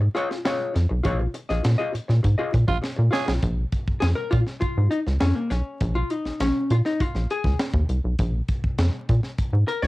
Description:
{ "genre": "funk", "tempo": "101 BPM", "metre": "4/4", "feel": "straight", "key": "Bb minor", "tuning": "A4 = 439 Hz", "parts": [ { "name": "vintage hollow-body jazz guitar", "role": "accompaniment", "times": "0.0-9.9 s", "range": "Bb3 to Eb5", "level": "-26 LUFS", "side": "left 2 dB", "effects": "cassette tape" }, { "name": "rubbery square bass", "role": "bass", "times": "0.0-9.9 s", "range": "Bb1 to Bb2", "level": "-21 LUFS", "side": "equal", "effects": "tube saturation" }, { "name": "crisp fusion drum kit", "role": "drums", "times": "0.2-9.9 s", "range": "hi-hat, kick drum, snare drum", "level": "-27 LUFS", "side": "equal", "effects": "cassette tape" }, { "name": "growling tenor saxophone", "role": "second line", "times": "2.7-3.3 s", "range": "F4 to Ab4", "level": "-26 LUFS", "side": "right 5 dB", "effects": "cassette tape" } ], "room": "little or no reverb", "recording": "home recording on cassette, vinyl crackle", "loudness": "-21 LUFS", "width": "side -19 dB against mid", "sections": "0.0-3.4 A section; 3.4-9.9 B section", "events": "band accent 1.0-3.4; drum fill 2.8-3.4; hollow-body jazz guitar solo 3.4-9.9", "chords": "0.0 Bbm7; 3.4 Bbm", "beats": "0.45 | 1.05 1.64 2.24 2.83 | 3.43 4.02 4.62 5.21 | 5.81 6.41 7.00 7.60 | 8.19 8.79 9.38" }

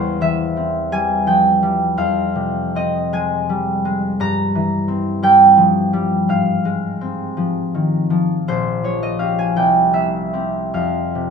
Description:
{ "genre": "classical, solo harp piece", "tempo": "48-58 BPM (dotted quarters)", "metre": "6/8", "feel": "rubato", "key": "F minor", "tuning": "A4 = 440 Hz", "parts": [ { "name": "concert harp", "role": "solo", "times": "0.0-11.3 s", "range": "Bb1 to Bb5", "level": "-15 LUFS", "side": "equal", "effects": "none" } ], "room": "moderate studio reverb, RT60 0.9 s", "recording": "minimal, uncompressed stereo recording", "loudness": "-15 LUFS", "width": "side -6 dB against mid", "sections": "0.0-11.3 A section", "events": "none", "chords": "0.0 C/E; 2.0 Fm; 4.2 C7/G; 6.3 Fm/Ab; 8.5 Gm7b5/Bb; 9.5 C7; 10.7 F5", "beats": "0.90 | 1.97 3.12 | 4.19 5.22 | 6.27 7.36 | 8.46 9.54 | 10.72" }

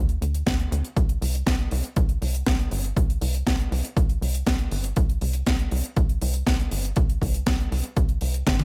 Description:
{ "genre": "italo disco", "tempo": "120 BPM", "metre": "4/4", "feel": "straight", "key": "unclear", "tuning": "A4 = 441 Hz", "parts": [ { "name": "tight sequencer bass", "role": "bass", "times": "0.0-8.6 s", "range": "G1 to D2", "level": "-28 LUFS", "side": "equal", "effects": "none" }, { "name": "tight funk drum kit", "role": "drums", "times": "0.1-8.6 s", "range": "hi-hat, snare drum, toms", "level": "-30 LUFS", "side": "equal", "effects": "studio reverb, gated reverb" }, { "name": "electronic kick drum", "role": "drums", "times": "0.5-8.6 s", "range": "none", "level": "-26 LUFS", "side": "equal", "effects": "studio reverb" } ], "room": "little or no reverb", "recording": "none", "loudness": "-24 LUFS", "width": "mono", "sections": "0.0-8.6 A section", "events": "drum fill 8.5", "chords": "none", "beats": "0.47 | 0.97 1.47 1.97 2.47 | 2.97 3.47 3.97 4.47 | 4.97 5.47 5.97 6.47 | 6.97 7.47 7.97 8.47" }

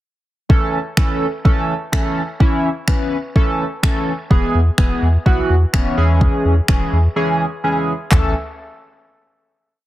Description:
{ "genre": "dance-pop", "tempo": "126 BPM", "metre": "4/4", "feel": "straight", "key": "A major", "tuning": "A4 = 440 Hz", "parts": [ { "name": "chorused polysynth", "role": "accompaniment", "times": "0.5-8.3 s", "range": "E3 to B4", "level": "-19 LUFS", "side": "equal", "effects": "sidechain pumping" }, { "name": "smooth R&B drum kit", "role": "drums", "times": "0.5-8.2 s", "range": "finger snaps, handclaps, kick drum, toms", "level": "-14 LUFS", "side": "equal", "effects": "soft clipping on snare" }, { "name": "warm sub bass", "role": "bass", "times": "4.3-8.3 s", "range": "E1 to E2", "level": "-16 LUFS", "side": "equal", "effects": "sidechain pumping" } ], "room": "light reverb, digital ambience", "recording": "dense, heavily limited modern master", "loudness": "-14 LUFS", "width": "side -15 dB against mid", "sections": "0.5-8.1 verse; 8.1-9.9 final chord", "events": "break 7.2-8.1", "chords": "0.5 A; 4.3 E; 6.0 C#m/E; 8.1 A", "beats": "| 0.50 0.97 1.45 1.93 | 2.40 2.88 3.35 3.83 | 4.31 4.78 5.26 5.74 | 6.21 6.69 7.16 7.64 | 8.12" }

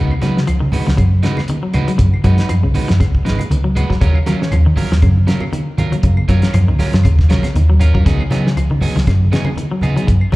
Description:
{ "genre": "afrobeat", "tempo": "119 BPM", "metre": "4/4", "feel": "swing 56% on 16ths", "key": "unclear", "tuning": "A4 = 440 Hz", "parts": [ { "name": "twangy electric guitar", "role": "arpeggios", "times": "0.0-10.4 s", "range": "Db3 to Gb3", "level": "-22 LUFS", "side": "left 3 dB", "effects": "none" }, { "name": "electric guitar at the edge of break-up", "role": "stabs", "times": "0.0-10.4 s", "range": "Gb3 to Cb5", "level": "-24 LUFS", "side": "right 4 dB", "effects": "none" }, { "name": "hollow-body short-scale fingered electric bass", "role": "bass", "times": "0.0-10.2 s", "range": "Ab1 to Eb3", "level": "-14 LUFS", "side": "equal", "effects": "none" }, { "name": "claves", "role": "percussion", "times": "0.1-10.3 s", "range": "none", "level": "-35 LUFS", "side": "left 3 dB", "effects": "none" }, { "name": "congas", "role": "percussion", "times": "0.1-10.4 s", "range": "none", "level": "-22 LUFS", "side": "equal", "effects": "none" }, { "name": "cloth-damped thuddy drum kit", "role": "drums", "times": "0.2-10.4 s", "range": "hi-hat, kick drum, snare drum", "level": "-18 LUFS", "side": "equal", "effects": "none" } ], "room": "small room reverb", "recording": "live gig heard through the venue's PA, club reverb", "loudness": "-12 LUFS", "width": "side -19 dB against mid", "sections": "0.0-10.4 A section", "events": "none", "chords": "0.0 Db9sus4; 4.0 Ebm9; 8.1 Db9sus4", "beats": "0.47 0.98 1.48 | 1.99 2.49 3.00 3.50 | 4.01 4.52 5.02 5.53 | 6.03 6.54 7.04 7.55 | 8.06 8.56 9.07 9.57 | 10.08" }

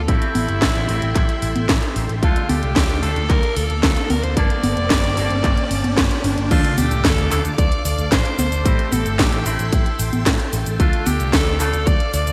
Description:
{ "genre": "italo disco", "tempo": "112 BPM", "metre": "4/4", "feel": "straight", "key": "D minor", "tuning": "A4 = 439 Hz", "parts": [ { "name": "string machine, full ensemble", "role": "sustained chords", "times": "0.0-12.3 s", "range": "Bb3 to D6", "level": "-32 LUFS", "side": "equal", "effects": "ensemble chorus" }, { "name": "picked electric bass with an envelope filter", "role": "bass", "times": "0.0-12.3 s", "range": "F1 to A2", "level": "-25 LUFS", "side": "equal", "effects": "none" }, { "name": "riser and sub drop", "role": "sound effects", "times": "1.4-8.7 s", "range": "none", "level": "-31 LUFS", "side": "equal", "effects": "none" }, { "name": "raspy alto saxophone", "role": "melody", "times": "0.1-12.3 s", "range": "E4 to D5", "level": "-27 LUFS", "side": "equal", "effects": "digital delay" }, { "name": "electric guitar with an envelope filter", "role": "stabs", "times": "0.1-11.8 s", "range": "G2 to A4", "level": "-31 LUFS", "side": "equal", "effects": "lush chorus, low-pass filter" }, { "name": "electronic kick drum", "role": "drums", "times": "0.1-12.0 s", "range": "none", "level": "-21 LUFS", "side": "equal", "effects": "overdrive" }, { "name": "house drum kit", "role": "drums", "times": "0.1-12.3 s", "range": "cabasa, congas, crash cymbal, handclaps, hi-hat, snare drum", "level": "-25 LUFS", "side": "equal", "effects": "overdrive, gated reverb" } ], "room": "moderate lush hall reverb, RT60 2.5 s", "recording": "bright 1980s-style digital production", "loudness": "-19 LUFS", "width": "mono", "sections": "0.0-6.5 A section; 6.5-12.3 B section", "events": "filter sweep on clean electric guitar 0.0-6.5; impact 6.5-8.7", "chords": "0.1 Am7; 2.2 Dm; 4.4 Gmadd9; 6.5 Dm; 8.7 Am7; 10.8 Dm", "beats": "| 0.08 0.62 1.15 1.69 | 2.23 2.76 3.30 3.83 | 4.37 4.90 5.44 5.98 | 6.51 7.05 7.58 8.12 | 8.65 9.19 9.73 10.26 | 10.80 11.33 11.87" }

